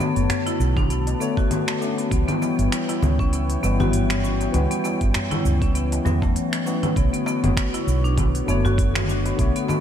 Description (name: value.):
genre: organic downtempo.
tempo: 99 BPM.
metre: 4/4.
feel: swing 56% on 16ths.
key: B minor.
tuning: A4 = 445 Hz.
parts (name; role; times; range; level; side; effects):
tine electric piano; accompaniment; 0.0-9.8 s; D3 to C#5; -27 LUFS; left 3 dB; lush chorus, sidechain pumping, ping-pong delay.
warm analog pad; sustained chords; 0.0-9.8 s; B3 to A5; -30 LUFS; right 1 dB; wide subtle chorus, sidechain pumping.
marimba with hard mallets; arpeggios; 0.0-9.8 s; F#3 to F#4; -26 LUFS; left 3 dB; vintage 12-bit sampler grit, ping-pong delay.
organic electronic drum kit; drums; 0.0-9.8 s; congas, finger snaps, hi-hat, shaker; -28 LUFS; equal; none.
woody fretless electric bass; bass; 0.2-9.5 s; F#1 to E2; -22 LUFS; right 1 dB; analog chorus, sidechain pumping.
darbuka; percussion; 0.3-9.8 s; none; -32 LUFS; equal; none.
electronic kick drum; drums; 0.8-9.5 s; none; -23 LUFS; right 1 dB; overdrive.
room: light reverb, digital ambience.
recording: none.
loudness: -19 LUFS.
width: side -9 dB against mid.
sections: 0.0-7.0 A section; 7.0-9.8 B section.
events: break 6.4-7.0.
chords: 0.0 Bm7; 2.1 C#m7b5; 7.0 Bm7.